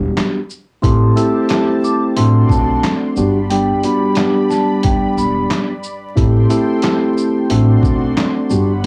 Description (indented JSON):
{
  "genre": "hip hop, boom-bap hip-hop",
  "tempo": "90 BPM",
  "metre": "4/4",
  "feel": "swing 56% on 16ths",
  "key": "G major",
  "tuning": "A4 = 440 Hz",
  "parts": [
    { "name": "mellow tine electric piano", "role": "accompaniment", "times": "0.0-8.9 s", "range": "G3 to A4", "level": "-18 LUFS", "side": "equal", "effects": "cassette tape" },
    { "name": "upright bass", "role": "bass", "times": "0.0-8.9 s", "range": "E1 to B1", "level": "-18 LUFS", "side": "equal", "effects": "none" },
    { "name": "boom bap sampler-style drum kit", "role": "drums", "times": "0.2-8.9 s", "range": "handclaps, hi-hat, kick drum, shaker, snare drum", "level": "-21 LUFS", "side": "equal", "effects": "none" },
    { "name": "vibraphone with soft mallets", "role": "melody", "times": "0.8-5.5 s", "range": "G5 to E6", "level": "-24 LUFS", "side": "equal", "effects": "tape echo" },
    { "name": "lush unison pad", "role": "sustained chords", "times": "0.8-8.9 s", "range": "G3 to C6", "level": "-30 LUFS", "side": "equal", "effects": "chorus" }
  ],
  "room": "little or no reverb",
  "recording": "dry, gritty hardware recording, transformer saturation, vinyl crackle, small room ambience",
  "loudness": "-15 LUFS",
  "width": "mono",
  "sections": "0.0-8.9 A section",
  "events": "none",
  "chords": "0.0 Gmaj7; 0.8 Am7; 2.2 D7/A; 3.2 Gmaj7; 6.2 Am7; 7.5 D7/A"
}